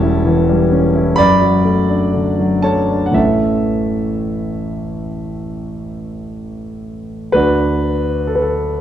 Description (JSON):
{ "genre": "classical, romantic character piece for solo piano", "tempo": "56-67 BPM", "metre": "4/4", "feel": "rubato", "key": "D major", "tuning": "A4 = 440 Hz", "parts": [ { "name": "warm concert grand piano", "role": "solo", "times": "0.0-8.8 s", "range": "E1 to B5", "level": "-14 LUFS", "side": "equal", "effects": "none" } ], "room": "wet recital hall reverb, RT60 1.5 s", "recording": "dark, warm production", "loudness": "-13 LUFS", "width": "side -10 dB against mid", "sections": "0.0-7.3 A section; 7.3-8.8 B section", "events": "none", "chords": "0.0 A7/E; 1.2 D/F#; 3.2 A; 7.3 D" }